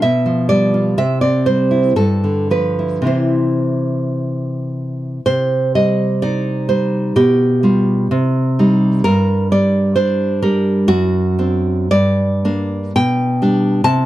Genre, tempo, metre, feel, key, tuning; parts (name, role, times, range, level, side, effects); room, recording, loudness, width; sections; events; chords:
romantic piece for solo classical guitar; 54-70 BPM; 2/4; rubato; C major, C minor from 5.2 s; A4 = 440 Hz
nylon-string guitar; solo; 0.0-14.1 s; F#2 to A5; -13 LUFS; equal
small room ambience; dry, close 1970s-style studio recording; -14 LUFS; side -14 dB against mid
0.0-5.2 A section; 5.2-14.1 B section
0.0 G7/B; 1.0 C; 2.0 G13; 3.1 C; 5.2 Cm; 7.1 G7/B; 8.1 Cm; 9.0 G5; 10.9 D7/F#; 11.9 Gm; 12.9 G/B